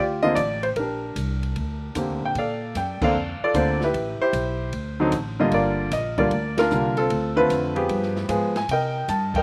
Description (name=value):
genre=jazz piano trio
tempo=152 BPM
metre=4/4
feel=swing 67% on 8ths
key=Bb major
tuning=A4 = 439 Hz
part: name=clear grand piano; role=melody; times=0.0-9.4 s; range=D3 to A5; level=-24 LUFS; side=equal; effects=none
part: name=upright bass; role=bass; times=0.0-9.4 s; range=G1 to C3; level=-31 LUFS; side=equal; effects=none
part: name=open jazz drum kit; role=drums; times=0.4-9.4 s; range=crash cymbal, hi-hat, kick drum, ride cymbal, snare drum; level=-37 LUFS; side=equal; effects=none
room=little or no reverb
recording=recorded outdoors, with no room sound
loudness=-24 LUFS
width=mono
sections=0.0-2.4 A section; 2.4-9.4 B section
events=band accent 2.9, 6.5, 9.3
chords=0.0 Bb69; 2.4 Bbmaj9; 3.9 Am9; 4.7 D7(no3); 5.5 Gm7; 7.1 Dm7; 7.9 G7b9; 8.7 Cm7